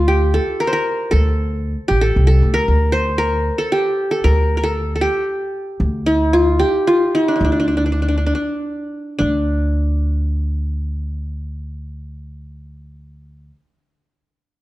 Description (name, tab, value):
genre	arabic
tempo	92-115 BPM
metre	3/4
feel	straight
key	D maqam bayati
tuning	A4 = 440 Hz
part	qanun	melody	0.0-13.5 s	D4 to C5	-18 LUFS	equal	none
part	upright bass	bass	0.0-13.5 s	A1 to D2	-18 LUFS	equal	none
room	light reverb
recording	dark, warm production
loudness	-15 LUFS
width	side -16 dB against mid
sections	0.0-9.2 A section; 9.2-13.1 B section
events	slowing down 5.8-9.2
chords	none